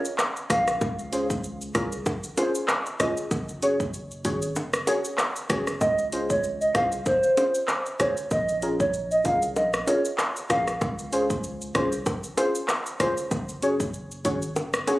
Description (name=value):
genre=dancehall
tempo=96 BPM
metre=4/4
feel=swing 56% on 16ths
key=Db major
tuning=A4 = 442 Hz
part: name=pop drum kit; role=drums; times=0.1-15.0 s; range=handclaps, hi-hat, kick drum, rim click, shaker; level=-28 LUFS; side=equal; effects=none
part: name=hollow clarinet-like synth lead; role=melody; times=0.5-0.6, 5.8-10.6 s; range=C5 to F5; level=-24 LUFS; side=right 1 dB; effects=chorus, ping-pong delay
part: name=deep mellow chord stab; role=accompaniment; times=0.5-15.0 s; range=Db4 to Eb5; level=-27 LUFS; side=equal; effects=chorus, sidechain pumping
part: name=punchy sub bass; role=bass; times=0.5-14.8 s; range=Gb1 to Db2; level=-36 LUFS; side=equal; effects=none
part: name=bongos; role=percussion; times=0.5-15.0 s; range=none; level=-32 LUFS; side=equal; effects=none
room=moderate lush hall reverb, RT60 2.2 s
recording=recorded on a phone in the room, club reverb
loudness=-23 LUFS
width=side -18 dB against mid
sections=0.0-15.0 A section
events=kick muted 14.6-15.0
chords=0.0 Bbm7; 0.8 Dbmaj7; 3.3 Gbsus2; 5.8 Dbmaj7; 8.3 Bbm7; 10.8 Dbmaj7; 13.3 Gbsus2